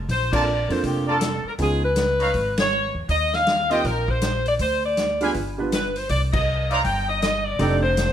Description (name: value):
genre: jazz, big band swing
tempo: 160 BPM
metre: 4/4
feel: swing 63% on 8ths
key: Bb major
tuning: A4 = 440 Hz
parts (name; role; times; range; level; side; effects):
- upright bass; bass; 0.0-8.1 s; F1 to F2; -26 LUFS; equal; none
- clear saxophone section; melody; 0.1-8.1 s; G4 to G5; -22 LUFS; left 1 dB; none
- swinging big-band drum kit; drums; 0.1-8.1 s; crash cymbal, hi-hat, kick drum, ride cymbal, snare drum; -28 LUFS; equal; none
- warm upright piano; accompaniment; 0.3-7.8 s; G3 to B4; -27 LUFS; right 4 dB; none
- warm trumpet section; stabs; 0.3-7.8 s; Eb4 to Bb5; -27 LUFS; right 1 dB; none
room: moderate large studio reverb, RT60 1.3 s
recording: none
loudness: -19 LUFS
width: side -10 dB against mid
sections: 0.1-8.1 A section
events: band accent 0.3, 2.5, 6.3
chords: 0.1 Bbmaj7; 1.6 Db9; 3.1 Eb69; 4.6 Ddim; 5.3 G7; 6.1 Cm; 7.6 F13